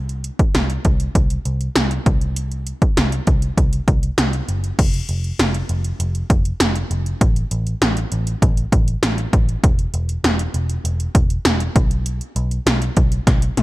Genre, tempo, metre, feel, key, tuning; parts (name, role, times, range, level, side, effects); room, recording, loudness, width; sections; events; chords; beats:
1980s-style pop; 99 BPM; 4/4; straight; A4 = 443 Hz
vintage muted picked electric bass; bass; 0.0-13.6 s; E1 to C2; -21 LUFS; equal
80s electronic pad drums; drums; 0.1-13.6 s; crash cymbal, hi-hat, kick drum, snare drum, toms; -17 LUFS; equal; gated reverb on snare and toms
little or no reverb; -16 LUFS; side -18 dB against mid
0.0-4.8 A section; 4.8-13.6 B section
drum fill 13.3-13.6
0.55 1.15 1.76 | 2.36 2.97 3.58 4.18 | 4.79 5.39 6.00 6.61 | 7.21 7.82 8.42 9.03 | 9.64 10.24 10.85 11.46 | 12.06 12.67 13.27